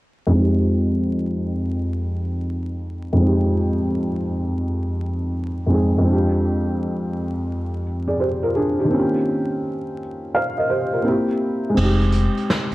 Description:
lo-fi hip hop; 84 BPM; 4/4; swing 64% on 16ths; F minor; A4 = 438 Hz
felt-muted upright piano; accompaniment; 0.3-12.7 s; F2 to F5; -19 LUFS; equal; cassette tape, low-pass filter
upright bass; bass; 11.8-12.7 s; F1; -18 LUFS; equal
vintage brush drum kit; drums; 11.8-12.7 s; crash cymbal, hi-hat, snare drum; -24 LUFS; right 1 dB
light reverb, studio reverb; dark, warm production, vinyl crackle; -19 LUFS; side -18 dB against mid
0.3-11.8 A section
filter sweep on felt piano 0.3-11.8; kick muted 11.8-12.7
0.3 Fm7; 6.1 Fm69; 8.9 Eb13; 11.1 C7; 11.8 Fm7

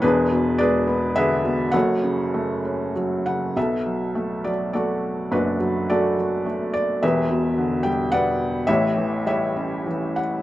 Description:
classical, lyrical solo piano; 95-112 BPM; 3/4; rubato; F# minor, B minor from 3.6 s; A4 = 440 Hz
felt-muted upright piano; solo; 0.0-10.4 s; E1 to G5; -20 LUFS; equal
little or no reverb; close, detailed microphones; -20 LUFS; side -15 dB against mid
0.0-3.6 A section; 3.6-10.4 B section
0.0 E7; 1.7 F#m; 3.6 Bm7; 7.0 Em7; 8.7 A7

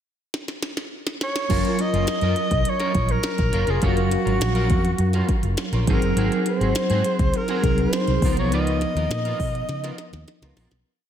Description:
polished 1980s jazz-funk pop; 103 BPM; 4/4; straight; F# major; A4 = 440 Hz
minimal click drum kit; drums; 0.3-10.8 s; crash cymbal, hi-hat, kick drum, snare drum; -26 LUFS; equal
breathy alto saxophone; melody; 1.2-10.5 s; F#4 to D#5; -26 LUFS; equal; ping-pong delay
mellow tine electric piano; accompaniment; 1.5-10.9 s; E#3 to E#5; -25 LUFS; equal; medium stereo tremolo, ensemble chorus
electric guitar at the edge of break-up; riff; 1.5-10.8 s; B3 to C#5; -31 LUFS; right 2 dB; analog chorus
vintage muted fingered electric bass; bass; 1.5-10.8 s; E#1 to C#3; -23 LUFS; equal
wet lush hall reverb, RT60 1.6 s; dreamy mix soaked in reverb; -19 LUFS; side -9 dB against mid
0.0-1.5 pickup bar; 1.5-10.9 verse
drum fill 0.3-1.5, 9.7-10.9; fade-out 8.5-10.9
0.0 N.C.; 1.5 F#maj7; 5.9 G#7; 8.2 C#13

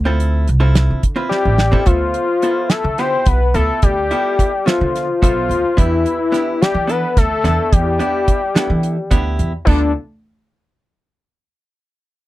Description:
progressive instrumental, band music in an uneven meter; 216 BPM (eighths); 7/8; straight; D dorian; A4 = 440 Hz
upright bass; bass; 0.0-9.9 s; A1 to E3; -17 LUFS; right 1 dB
vintage hollow-body jazz guitar; accompaniment; 0.1-9.9 s; B3 to E5; -24 LUFS; right 2 dB
damped 70s drum kit; drums; 0.2-9.8 s; crash cymbal, hi-hat, kick drum, snare drum; -16 LUFS; right 1 dB
lead with added fifth; melody; 1.3-9.9 s; D4 to C5; -17 LUFS; left 3 dB; chorus
little or no reverb; dry, close 1970s-style studio recording; -14 LUFS; side -16 dB against mid
0.0-1.9 A section; 1.9-9.7 B section; 9.7-11.6 C section
drum fill 1.3-1.9
0.0 Dm7; 1.9 Dm69; 5.8 Em7; 9.7 Dm69

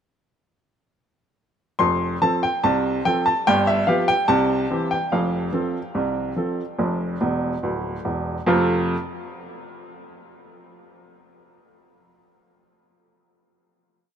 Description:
ragtime piano; 72 BPM; 2/4; straight; F major; A4 = 442 Hz
bright upright piano; solo; 1.8-8.9 s; D1 to C6; -20 LUFS; equal
light reverb; -19 LUFS; side -8 dB against mid
1.8-8.5 A section; 8.5-10.1 final chord
upright piano fill 7.2-8.5
1.8 F; 3.5 G7; 4.3 C; 5.1 F

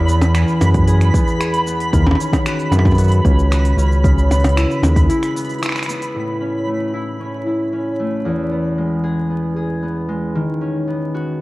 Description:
folktronica; 114 BPM; 4/4; straight; A4 = 440 Hz
concert harp; arpeggios; 0.0-11.4 s; E2 to G#4; -19 LUFS; equal; low-pass filter, cassette tape, tape echo
round analog bass; bass; 0.0-5.1 s; C#2 to F#2; -14 LUFS; equal
twinkling granular texture; texture; 0.0-6.2 s; B5; -25 LUFS; right 2 dB; built-in reverb, cassette tape
minimal click drum kit; drums; 0.1-6.1 s; cabasa, finger snaps, hi-hat, percussion blips; -22 LUFS; equal; overdrive, small room ambience, cassette tape
electronic kick drum; drums; 0.7-5.1 s; -17 LUFS; equal; overdrive, small room ambience, cassette tape
light reverb, digital ambience; home recording on cassette, vinyl crackle; -15 LUFS; side -19 dB against mid
0.0-6.1 A section; 6.1-11.4 B section
break 5.1-6.1; band accent 5.6
0.0 E; 1.9 Badd9/D#; 6.1 A; 8.2 E; 10.4 Badd9/D#

